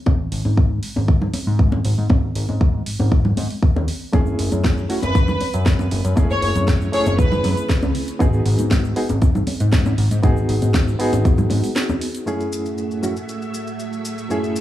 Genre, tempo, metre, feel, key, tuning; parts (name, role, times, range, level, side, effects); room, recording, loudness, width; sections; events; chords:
nu-disco, nu disco; 118 BPM; 4/4; straight; F# dorian; A4 = 444 Hz
fat analog bass; bass; 0.1-11.6 s; F#1 to G#2; -20 LUFS; equal; sidechain pumping
electronic kick drum; drums; 0.1-11.4 s; -17 LUFS; equal; studio reverb
congas and egg shaker; percussion; 0.1-12.2 s; -26 LUFS; left 2 dB
house drum kit; drums; 0.3-14.6 s; hi-hat, shaker, snare drum; -28 LUFS; right 1 dB; studio reverb
barky reed electric piano; accompaniment; 4.1-14.6 s; F#2 to G#4; -24 LUFS; equal; overdrive, fast tremolo, sidechain pumping, tape echo
warm symphonic violin section; melody; 5.0-7.6 s; B4 to C#5; -24 LUFS; left 1 dB; tape echo
string machine, full ensemble; sustained chords; 12.5-14.6 s; A3 to E5; -27 LUFS; right 3 dB; ensemble chorus, sidechain pumping
digital ambience; dry, gritty hardware recording, small room reverb; -17 LUFS; side -13 dB against mid
0.0-12.3 A section; 12.3-14.6 B section
break 11.8-12.3
0.1 G#5; 4.1 F#m9; 8.2 G#m7; 12.3 F#m9